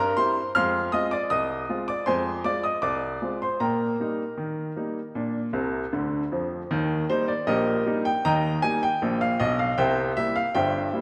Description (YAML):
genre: ragtime piano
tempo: 78 BPM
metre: 2/4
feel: straight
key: Eb major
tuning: A4 = 440 Hz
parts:
  - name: clear baby grand piano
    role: solo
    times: 0.0-11.0 s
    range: G1 to F6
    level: -26 LUFS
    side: equal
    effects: none
room: wet scoring stage reverb, RT60 2.1 s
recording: none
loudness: -26 LUFS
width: mono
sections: 0.0-6.7 A section; 6.7-11.0 B section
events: grand piano fill 5.5-6.7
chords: 0.0 C7; 0.5 Fm; 3.6 Eb/Bb; 5.2 Bb; 6.7 Eb; 9.8 C7